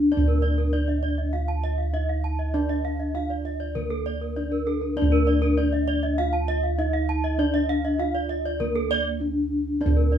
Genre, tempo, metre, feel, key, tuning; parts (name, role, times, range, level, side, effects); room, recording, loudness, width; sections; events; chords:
Balinese gamelan; 99 BPM; 4/4; straight; D pelog; A4 = 440 Hz
gamelan-type bronze metallophone; melody; 0.0-10.2 s; Bb3 to F4; -27 LUFS; left 2 dB
gamelan-type bossed gongs; bass; 0.0-10.2 s; D2 to Eb4+35c; -25 LUFS; right 1 dB
gamelan-type bronze metallophone; arpeggios; 0.1-10.0 s; Bb4 to F5; -30 LUFS; left 2 dB
gamelan-type bronze metallophone; arpeggios; 0.3-10.2 s; A4 to A5; -29 LUFS; right 4 dB
moderate studio ambience, RT60 0.5 s; band playing live in one room; -22 LUFS; side -9 dB against mid
0.0-10.2 A section